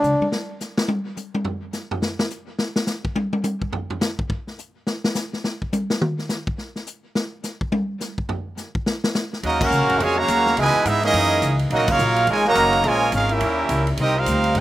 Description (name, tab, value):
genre	jazz, big band swing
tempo	211 BPM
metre	4/4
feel	swing 62% on 8ths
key	Eb minor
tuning	A4 = 440 Hz
part	dark saxophone section	sustained chords	0.0-0.3, 9.4-14.6 s	B2 to Gb5	-31 LUFS	left 1 dB	none
part	upright bass	bass	0.0-0.2, 9.4-14.6 s	Gb1 to Ab2	-24 LUFS	equal	none
part	swinging big-band drum kit	drums	0.0-14.6 s	crash cymbal, hi-hat, kick drum, ride cymbal, snare drum, toms	-25 LUFS	left 1 dB	none
part	brilliant trumpet section	melody	9.4-14.6 s	Cb4 to A#5	-20 LUFS	right 2 dB	none
part	bright trombone section	second line	9.4-14.6 s	Bb2 to Gb4	-21 LUFS	right 2 dB	none
room	little or no reverb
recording	recorded outdoors, with no room sound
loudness	-19 LUFS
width	side -14 dB against mid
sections	0.3-9.4 A section; 9.4-14.6 B section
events	drum fill 0.0; drum solo 0.3-9.4; band accent 9.6, 11.8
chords	0.3 N.C.; 9.4 Ebm11; 10.6 Dbm9; 11.1 Gb13; 11.7 Bmaj9; 12.8 Bbm7; 13.4 Eb7b9; 14.0 Abmaj9#11 (rootless)